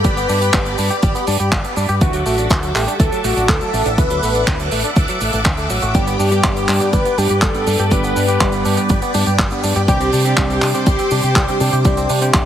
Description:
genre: italo disco.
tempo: 122 BPM.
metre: 4/4.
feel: straight.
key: G major.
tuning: A4 = 440 Hz.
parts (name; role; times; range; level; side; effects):
wide unison lead; melody; 0.0-12.5 s; F#4 to B4; -20 LUFS; left 1 dB; cassette tape, ping-pong delay.
phased string machine; sustained chords; 0.0-12.5 s; G4 to D6; -23 LUFS; equal; ensemble chorus, phaser.
direct-recorded clean electric guitar; arpeggios; 0.0-12.5 s; E3 to G4; -25 LUFS; right 2 dB; ping-pong delay.
fingered electric bass with an envelope filter; bass; 0.0-12.5 s; G1 to C3; -20 LUFS; equal; none.
damped 70s drum kit; drums; 0.0-12.4 s; cabasa, handclaps, hi-hat; -21 LUFS; right 1 dB; none.
electronic kick drum; drums; 0.0-12.4 s; none; -18 LUFS; equal; none.
barky tine electric piano; stabs; 5.9-12.5 s; G2 to C5; -22 LUFS; equal; lush chorus, low-pass filter, ping-pong delay.
room: light reverb, studio ambience.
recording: heavily compressed radio sound, multiband compression.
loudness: -14 LUFS.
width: side -10 dB against mid.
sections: 0.0-12.5 A section.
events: none.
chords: 0.0 G; 2.0 Dadd9; 5.9 G; 9.9 Csus2.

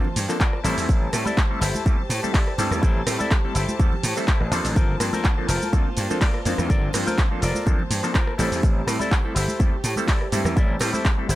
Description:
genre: filtered disco house.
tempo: 124 BPM.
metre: 4/4.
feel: swing 54% on 16ths.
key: unclear.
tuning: A4 = 440 Hz.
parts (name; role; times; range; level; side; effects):
mellow clav; accompaniment; 0.0-11.3 s; F3 to A5; -29 LUFS; equal; phaser, sidechain pumping.
dark chamber string section; sustained chords; 0.0-11.4 s; Bb3 to A5; -32 LUFS; equal; sidechain pumping.
electric guitar with an envelope filter; riff; 0.0-11.4 s; E4 to D5; -30 LUFS; left 3 dB; sidechain pumping.
congas and tambourine; percussion; 0.0-11.4 s; none; -34 LUFS; right 2 dB; sidechain pumping on perc.
gritty slap bass; bass; 0.1-11.4 s; F1 to A2; -25 LUFS; equal; overdrive, sidechain pumping.
punchy analog drum machine; drums; 0.2-11.4 s; handclaps, hi-hat, rim click, shaker; -28 LUFS; equal; sidechain pumping on perc, sidechain pumping on hats, sidechain pumping on cymbals.
electronic kick drum; drums; 0.4-11.2 s; none; -20 LUFS; equal; none.
room: little or no reverb.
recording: none.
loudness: -19 LUFS.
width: side -15 dB against mid.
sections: 0.0-11.4 A section.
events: none.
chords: 0.0 Gm11; 0.6 Am7; 4.8 Gm11; 8.4 Am7.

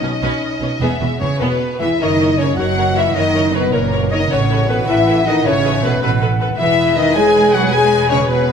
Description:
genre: cinematic.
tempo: 105 BPM (dotted quarters).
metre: 6/8.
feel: straight.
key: unclear.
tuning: A4 = 443 Hz.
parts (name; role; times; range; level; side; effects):
warm symphonic violin section; melody; 0.0-8.5 s; A#4 to G#5; -23 LUFS; left 4 dB; none.
rich symphonic violin section; second line; 0.0-8.5 s; F#4 to G#5; -24 LUFS; left 2 dB; none.
clear symphonic viola section; accompaniment; 0.0-8.5 s; B3 to C#5; -24 LUFS; equal; none.
warm French horn section; sustained chords; 0.0-8.5 s; A#3 to G#4; -18 LUFS; left 2 dB; none.
rich symphonic cello section; bass; 0.0-8.5 s; E2 to G#3; -22 LUFS; right 3 dB; none.
warm symphonic double bass section; bass; 0.0-8.5 s; E1 to B1; -21 LUFS; right 4 dB; none.
warm clarinet; second line; 1.2-8.5 s; A#4 to G#5; -22 LUFS; left 2 dB; none.
mellow hollow concert flute; second line; 2.6-8.5 s; B4 to F#5; -24 LUFS; left 3 dB; none.
room: wet scoring stage reverb, RT60 1.9 s.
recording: none.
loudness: -13 LUFS.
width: side -7 dB against mid.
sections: 0.0-2.0 A section; 2.0-8.5 B section.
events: build-up 0.0-2.0.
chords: 0.0 Badd9; 0.8 E; 2.0 F#; 4.3 Asus2; 6.6 E.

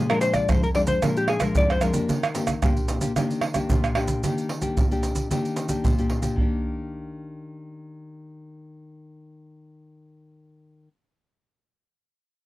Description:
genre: samba and choro.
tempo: 112 BPM.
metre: 4/4.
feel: straight.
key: Eb major.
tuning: A4 = 437 Hz.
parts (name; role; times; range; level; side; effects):
hollow-body jazz guitar; melody; 0.0-3.7 s; G4 to D5; -25 LUFS; left 2 dB; none.
nylon-string guitar; accompaniment; 0.0-10.9 s; F2 to G4; -27 LUFS; left 2 dB; none.
maracas, pandeiro, tamborim and surdo; percussion; 0.1-6.5 s; none; -24 LUFS; right 2 dB; none.
room: light reverb.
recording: dry, close 1970s-style studio recording.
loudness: -21 LUFS.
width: side -17 dB against mid.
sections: 0.0-4.2 A section; 4.2-6.4 B section; 6.4-10.7 C section.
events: none.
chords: 0.0 Bb7; 2.1 Ebmaj7.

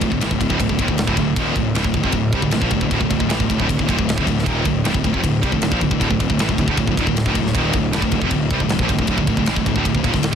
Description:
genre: heavy metal.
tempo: 156 BPM.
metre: 4/4.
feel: straight.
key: D minor.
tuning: A4 = 440 Hz.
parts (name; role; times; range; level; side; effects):
distorted electric guitar; riff; 0.0-10.3 s; D2 to G3; -22 LUFS; right 11 dB; overdrive.
scooped high-gain guitar; riff; 0.0-10.3 s; D2 to G3; -22 LUFS; left 10 dB; distortion.
fuzz picked electric bass; bass; 0.0-10.3 s; D1 to C2; -23 LUFS; equal; overdrive.
tight metal drum kit; drums; 0.0-10.3 s; kick drum, ride cymbal, snare drum; -22 LUFS; equal; none.
room: little or no reverb.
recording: dense, heavily limited modern master.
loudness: -16 LUFS.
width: side -8 dB against mid.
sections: 0.0-10.3 A section.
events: none.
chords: 0.0 Dm.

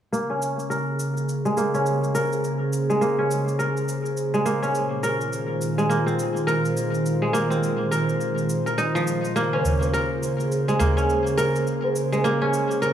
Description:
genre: organic downtempo.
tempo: 104 BPM.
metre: 4/4.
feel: swing 60% on 16ths.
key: Bb minor.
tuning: A4 = 440 Hz.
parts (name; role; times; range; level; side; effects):
airy breathy pad; sustained chords; 0.1-12.9 s; Bb2 to C5; -24 LUFS; right 1 dB; chorus.
kora; arpeggios; 0.1-12.9 s; F3 to Bb4; -24 LUFS; equal; low-pass filter, digital delay.
shaker; drums; 0.1-12.9 s; none; -39 LUFS; equal; overdrive, studio reverb.
tabla; percussion; 9.5-12.2 s; none; -26 LUFS; equal; none.
room: wet lush hall reverb, RT60 1.8 s, studio reverb.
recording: small room ambience.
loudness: -21 LUFS.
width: side -10 dB against mid.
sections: 0.1-12.9 A section.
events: filter sweep on kora 0.1-12.9; filter sweep on analog synth pad 0.1-12.9.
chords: 0.1 Bbm9; 4.7 Fm7/Bb; 9.4 Bbm9.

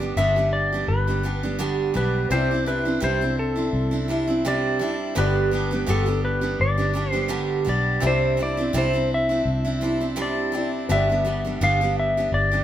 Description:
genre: acoustic pop.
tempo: 84 BPM.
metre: 4/4.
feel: swing 55% on 16ths.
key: C major.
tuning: A4 = 440 Hz.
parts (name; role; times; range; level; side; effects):
clean lap steel guitar; melody; 0.0-12.6 s; A4 to F5; -24 LUFS; left 1 dB; none.
clear concert grand piano; accompaniment; 0.0-12.6 s; B3 to D5; -34 LUFS; left 5 dB; none.
picked steel-string acoustic guitar; accompaniment; 0.0-12.6 s; G2 to G4; -25 LUFS; right 2 dB; none.
vintage muted fingered electric bass; bass; 0.0-12.6 s; G1 to C2; -26 LUFS; equal; none.
room: wet studio reverb, RT60 0.8 s.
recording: band playing live in one room.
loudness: -20 LUFS.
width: side -11 dB against mid.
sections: 0.0-12.6 A section.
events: none.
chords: 0.0 G; 2.3 Cadd9; 5.2 G; 8.0 Cadd9; 10.9 G.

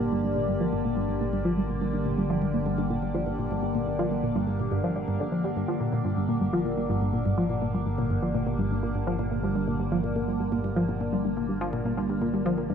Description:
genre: ambient, sequencer-driven space music.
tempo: 124 BPM.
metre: 4/4.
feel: straight.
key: G minor.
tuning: A4 = 442 Hz.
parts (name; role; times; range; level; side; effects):
evolving wavetable pad; sustained chords; 0.0-12.7 s; D3 to D5; -29 LUFS; left 1 dB; chorus, built-in reverb, phaser.
tight sequenced synth; riff; 0.0-12.7 s; G2 to G3; -28 LUFS; equal; chorus, phaser, analog delay.
fat analog bass; bass; 0.0-12.7 s; G1; -36 LUFS; equal; none.
room: wet concert hall reverb, RT60 2.2 s.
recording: none.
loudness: -25 LUFS.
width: side -7 dB against mid.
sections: 0.0-12.7 A section.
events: filter sweep on synth arpeggio sound 0.0-12.7.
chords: 0.0 Gm.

